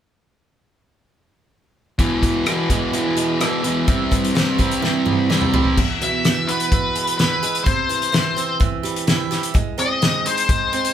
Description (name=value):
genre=quiet-loud alternative rock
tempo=127 BPM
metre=4/4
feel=straight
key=unclear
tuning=A4 = 442 Hz
part: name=picked swing-style acoustic guitar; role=arpeggios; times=2.0-10.9 s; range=E2 to E4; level=-25 LUFS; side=right 6 dB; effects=none
part: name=fuzz guitar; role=riff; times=2.0-5.8 s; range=E2 to C4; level=-19 LUFS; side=equal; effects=distortion
part: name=loose indie drum kit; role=drums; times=2.0-10.9 s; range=crash cymbal, hi-hat, kick drum, rim click, snare drum, toms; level=-20 LUFS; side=equal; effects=none
part: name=octave-fuzz lead guitar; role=melody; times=6.0-10.9 s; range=B4 to E5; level=-20 LUFS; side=left 3 dB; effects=distortion
room=wet studio reverb, RT60 0.6 s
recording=band playing live in one room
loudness=-17 LUFS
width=side -10 dB against mid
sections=2.0-5.8 A section; 5.8-10.9 B section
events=drum fill 4.8-5.8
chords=2.0 E; 3.9 C; 5.8 E; 7.7 C; 9.6 G#